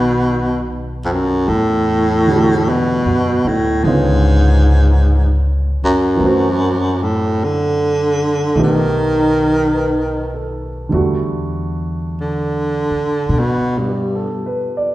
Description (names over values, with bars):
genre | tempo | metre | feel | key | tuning
jazz ballad | 51 BPM | 4/4 | swing 68% on 8ths | E minor | A4 = 441 Hz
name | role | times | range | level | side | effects
warm baritone saxophone | melody | 0.0-14.4 s | F2 to D#3 | -16 LUFS | equal | none
warm grand piano | accompaniment | 0.0-14.9 s | D3 to D5 | -21 LUFS | right 2 dB | none
upright bass | bass | 0.0-14.9 s | B1 to B2 | -19 LUFS | equal | none
room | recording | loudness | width
wet recital hall reverb, RT60 1.6 s | recorded in a church or concert hall | -14 LUFS | side -16 dB against mid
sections
0.0-10.9 A section; 10.9-14.9 B section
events
baritone saxophone solo 10.9-14.9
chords
0.0 B7; 1.5 Em11; 3.8 C#7b9; 6.2 F#m7b5; 8.6 Baug7; 10.9 Em11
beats
0.30 | 1.48 2.66 3.84 5.02 | 6.20 7.38 8.56 9.74 | 10.92 12.10 13.28 14.46